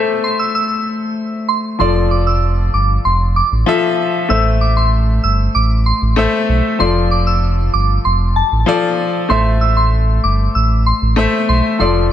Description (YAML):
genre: dancehall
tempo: 96 BPM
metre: 4/4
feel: straight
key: A minor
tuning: A4 = 440 Hz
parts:
  - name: clear baby grand piano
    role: accompaniment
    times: 0.0-12.1 s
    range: F3 to E5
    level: -17 LUFS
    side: left 4 dB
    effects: none
  - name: soft synth bell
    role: melody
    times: 0.2-11.9 s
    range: A5 to E6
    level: -19 LUFS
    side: right 1 dB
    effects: chorus, phaser, ping-pong delay
  - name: sub bass with octave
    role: bass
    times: 1.8-12.1 s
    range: F1 to B1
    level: -14 LUFS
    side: right 1 dB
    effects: none
room: small room reverb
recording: none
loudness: -12 LUFS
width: side -10 dB against mid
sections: 0.0-1.8 A section; 1.8-12.1 B section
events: break 0.0-1.8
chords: 0.0 Am; 1.8 F6; 4.3 Am; 6.8 F6; 9.3 Am